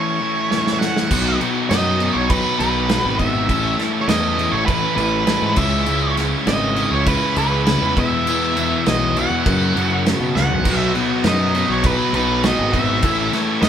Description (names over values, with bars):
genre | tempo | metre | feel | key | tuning
quiet-loud alternative rock | 101 BPM | 4/4 | straight | B mixolydian | A4 = 440 Hz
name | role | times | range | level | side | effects
octave-fuzz lead guitar | melody | 0.0-13.7 s | B4 to F#5 | -22 LUFS | right 3 dB | distortion
percussive tonewheel organ | sustained chords | 0.0-13.7 s | E4 to C#6 | -34 LUFS | left 1 dB | none
distorted electric guitar | riff | 0.0-13.7 s | F#2 to E4 | -25 LUFS | right 8 dB | overdrive
thick fuzz guitar | riff | 0.0-13.7 s | E2 to C#4 | -23 LUFS | left 7 dB | distortion
loose indie drum kit | drums | 0.5-13.7 s | crash cymbal, kick drum, snare drum, toms | -21 LUFS | equal | none
fuzz picked electric bass | bass | 1.1-13.7 s | G#1 to B2 | -22 LUFS | equal | overdrive
biting overdriven guitar | riff | 10.6-13.7 s | A2 to B3 | -25 LUFS | equal | none
room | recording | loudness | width
moderate studio reverb, RT60 0.7 s | band playing live in one room | -16 LUFS | side -9 dB against mid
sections
0.0-1.1 A section; 1.1-13.7 B section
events
break 0.0-1.1; drum fill 0.5-1.1, 10.3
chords
0.0 A; 1.1 B; 3.5 A; 5.6 C#m7; 8.0 E; 9.5 F#sus4; 10.6 B; 13.0 A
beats
0.51 | 1.10 1.70 2.30 2.90 | 3.49 4.09 4.68 5.28 | 5.88 6.47 7.07 7.67 | 8.26 8.86 9.45 10.05 | 10.65 11.24 11.84 12.44 | 13.03 13.63